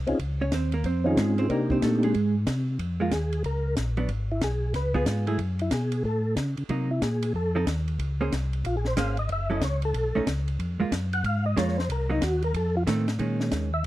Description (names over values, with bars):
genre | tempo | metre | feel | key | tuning
soul jazz organ trio | 185 BPM | 4/4 | swing 63% on 8ths | Db major | A4 = 440 Hz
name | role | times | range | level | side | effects
mellow tonewheel organ | bass | 0.0-13.9 s | Gb1 to Db3 | -27 LUFS | equal | chorus vibrato, slow rotary speaker
percussive tonewheel organ | melody | 0.1-13.8 s | Bb3 to Gb5 | -28 LUFS | equal | slow rotary speaker, chorus vibrato
compact cocktail drum kit | drums | 0.1-13.9 s | hi-hat, kick drum, ride cymbal, snare drum | -33 LUFS | left 1 dB | none
vintage hollow-body jazz guitar | accompaniment | 0.4-13.7 s | Eb3 to Db5 | -28 LUFS | right 4 dB | none
room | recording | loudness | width
little or no reverb | dry, close 1970s-style studio recording | -24 LUFS | side -15 dB against mid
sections
0.0-2.8 A section; 2.8-13.2 A section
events
hollow-body jazz guitar solo 0.0-2.8; tonewheel organ solo 2.8-13.9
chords
0.2 Dbmaj9; 1.5 Cm9; 2.1 Ab; 2.8 Db6; 4.1 Abm; 4.7 Db7; 5.4 Gbmadd9; 6.7 Cm7b5; 7.3 F7; 8.0 Bbm9; 9.3 Gbm7; 9.9 Cb9; 10.6 Fmadd11; 11.9 Cm7b5; 12.5 F7; 13.2 Bbm11